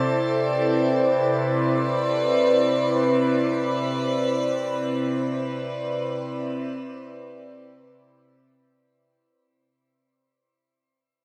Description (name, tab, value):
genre	ambient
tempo	free time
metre	none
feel	none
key	C major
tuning	A4 = 440 Hz
part	evolving wavetable pad	sustained chords	0.0-8.9 s	C3 to D5	-24 LUFS	equal	phaser, built-in reverb
room	wet shimmer reverb, RT60 7.5 s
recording	none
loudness	-23 LUFS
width	mono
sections	0.0-8.9 A section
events	fade-out 3.3-8.9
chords	0.0 Cadd9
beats	free time